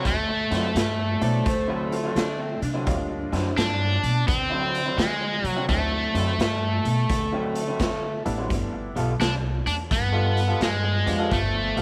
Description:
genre	electric blues shuffle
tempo	85 BPM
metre	4/4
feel	swing 65% on 8ths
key	D mixolydian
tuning	A4 = 438 Hz
part	cranked stack guitar	melody	0.0-11.8 s	G#3 to D4	-28 LUFS	equal	overdrive
part	electric guitar through a small old amp	riff	0.0-11.8 s	D3 to A4	-34 LUFS	equal	none
part	upright bass	bass	0.1-11.8 s	G1 to D3	-30 LUFS	equal	none
part	raw garage drum kit	drums	0.1-11.8 s	hi-hat, kick drum, snare drum	-32 LUFS	equal	none
part	overdriven slide guitar	second line	1.2-3.4 s	C4 to D5	-35 LUFS	equal	none
part	bright upright piano	accompaniment	1.2-11.8 s	F3 to Eb5	-34 LUFS	equal	none
room	light reverb, small room ambience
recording	none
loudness	-24 LUFS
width	mono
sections	0.0-11.8 A section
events	none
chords	0.0 D9; 8.5 G9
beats	| 0.05 0.75 1.46 2.16 | 2.87 3.57 4.28 4.98 | 5.68 6.39 7.09 7.80 | 8.50 9.20 9.91 10.61 | 11.31

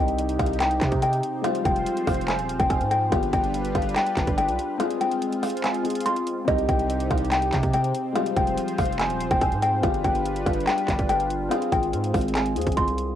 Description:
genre	hip hop, trap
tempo	143 BPM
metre	4/4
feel	half-time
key	C harmonic minor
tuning	A4 = 440 Hz
part	buzzing kalimba	melody	0.0-13.0 s	Eb5 to C6	-25 LUFS	left 1 dB	low-pass filter, tape echo
part	dark concert grand piano	accompaniment	0.0-13.2 s	G3 to G5	-31 LUFS	left 8 dB	low-pass filter, cassette tape
part	warm analog pad	sustained chords	0.0-13.2 s	C3 to C5	-30 LUFS	right 1 dB	chorus, cassette tape
part	distorted 808-style bass	bass	0.0-13.2 s	Eb1 to C3	-28 LUFS	right 1 dB	distortion
part	trap drum kit	drums	0.1-13.1 s	handclaps, hi-hat, kick drum	-27 LUFS	right 1 dB	cassette tape
room	light reverb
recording	home recording on cassette, low-pass filter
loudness	-21 LUFS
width	side -10 dB against mid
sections	0.0-13.2 A section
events	kick muted 4.8-6.5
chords	0.0 Cm; 1.4 Fmadd9; 3.1 G7; 4.8 Ab6; 6.5 Cm; 8.2 Fmadd9; 9.8 G7; 11.5 Ab6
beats	0.18 0.60 1.02 | 1.44 1.86 2.28 2.70 | 3.12 3.54 3.96 4.38 | 4.80 5.22 5.64 6.06 | 6.48 6.90 7.32 7.74 | 8.16 8.57 8.99 9.41 | 9.83 10.25 10.67 11.09 | 11.51 11.93 12.35 12.77

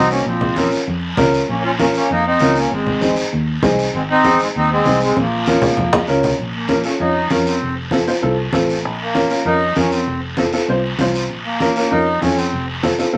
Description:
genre	latin, cumbia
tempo	196 BPM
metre	4/4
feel	straight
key	Bb minor, Bb harmonic minor from 6.4 s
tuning	A4 = 437 Hz
part	accordion	melody	0.0-12.7 s	F3 to F4	-20 LUFS	equal	none
part	clear upright piano	accompaniment	0.0-13.2 s	C4 to Db5	-21 LUFS	equal	none
part	fingered electric bass	bass	0.0-13.2 s	F1 to F2	-26 LUFS	equal	none
part	guiro	percussion	0.1-13.2 s	none	-28 LUFS	equal	none
part	congas	percussion	0.3-13.2 s	none	-24 LUFS	equal	none
room	wet small room reverb, RT60 0.5 s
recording	vinyl crackle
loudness	-17 LUFS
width	mono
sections	0.0-6.4 A section; 6.4-13.2 B section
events	drum fill 5.2-6.4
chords	0.3 Bbm; 2.7 Ab; 5.2 Bbm; 7.6 F; 8.8 Bbm; 10.1 F5; 11.3 Bbm; 12.5 F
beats	| 0.26 0.57 0.88 1.18 | 1.49 1.79 2.10 2.41 | 2.71 3.02 3.33 3.63 | 3.94 4.24 4.55 4.86 | 5.16 5.47 5.78 6.08 | 6.39 6.70 7.00 7.31 | 7.62 7.92 8.23 8.54 | 8.84 9.15 9.46 9.76 | 10.07 10.38 10.69 10.99 | 11.30 11.61 11.91 12.22 | 12.53 12.84 13.14

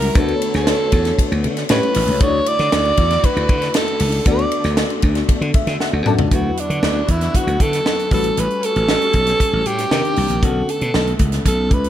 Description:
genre	polished 1980s jazz-funk pop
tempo	117 BPM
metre	4/4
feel	straight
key	D major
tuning	A4 = 441 Hz
part	breathy alto saxophone	melody	0.0-11.9 s	D4 to D5	-20 LUFS	right 1 dB	none
part	FM electric piano	accompaniment	0.0-11.9 s	D3 to A5	-24 LUFS	left 5 dB	ensemble chorus
part	warm studio string section	sustained chords	0.0-11.9 s	C3 to C#5	-30 LUFS	equal	none
part	slap bass	bass	0.0-11.9 s	A1 to D3	-20 LUFS	equal	none
part	tight funk drum kit	drums	0.0-11.9 s	hi-hat, kick drum, ride cymbal, snare drum, toms	-19 LUFS	equal	gated reverb
room	studio reverb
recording	none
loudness	-15 LUFS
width	side -11 dB against mid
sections	0.0-6.3 A section; 6.3-11.9 B section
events	FM electric piano fill 5.3-6.3; drum fill 5.8-6.3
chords	0.2 Bm7/D; 1.7 A7; 2.2 Dadd9; 4.3 Bm7/D; 6.3 D69; 8.1 A13; 9.9 Cm9; 10.4 Bm9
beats	| 0.15 0.67 1.18 1.70 | 2.21 2.72 3.23 3.75 | 4.26 4.77 5.29 5.80 | 6.31 6.83 7.34 7.86 | 8.37 8.88 9.40 9.91 | 10.43 10.94 11.45

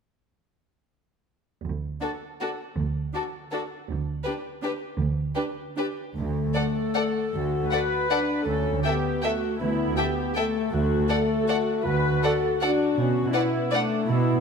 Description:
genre	classical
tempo	146-176 BPM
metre	3/4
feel	rubato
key	D major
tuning	A4 = 440 Hz
part	dark chamber cello section	bass	1.6-14.4 s	D2 to B2	-28 LUFS	right 4 dB	none
part	warm chamber violin section	melody	2.0-13.8 s	A4 to G5	-32 LUFS	left 3 dB	none
part	warm chamber violin section	second line	2.0-13.8 s	F#4 to E5	-32 LUFS	left 2 dB	none
part	rich studio viola section	accompaniment	2.0-14.4 s	D4 to B4	-29 LUFS	right 1 dB	none
part	warm French horn section	sustained chords	6.2-14.4 s	A3 to F#4	-27 LUFS	left 5 dB	none
room	moderate concert hall reverb, RT60 1.8 s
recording	none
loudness	-23 LUFS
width	side -6 dB against mid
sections	1.6-6.2 A section; 6.2-14.4 B section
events	none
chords	1.6 N.C.; 6.2 D; 8.5 A7/D; 10.7 D; 13.0 Bm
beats	| 1.64 2.02 2.41 | 2.78 3.14 3.53 | 3.89 4.25 4.63 | 4.99 5.36 5.77 | 6.17 6.55 6.95 | 7.34 7.71 8.10 | 8.47 8.84 9.23 | 9.60 9.97 10.36 | 10.73 11.10 11.48 | 11.87 12.23 12.62 | 12.98 13.34 13.72 | 14.08

